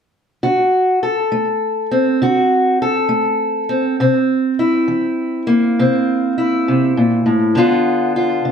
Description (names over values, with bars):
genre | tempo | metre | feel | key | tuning
acoustic country blues, solo or duo | 67 BPM (dotted quarters) | 12/8 | straight | unclear | A4 = 440 Hz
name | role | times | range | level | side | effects
fingerpicked steel-string acoustic guitar | solo | 0.4-8.5 s | G2 to A4 | -14 LUFS | equal | slapback echo
room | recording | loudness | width
moderate booth ambience, RT60 0.3 s | close, detailed microphones | -14 LUFS | side -7 dB against mid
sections
0.4-8.5 A section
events
none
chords
0.4 D7; 4.0 C7; 7.6 G7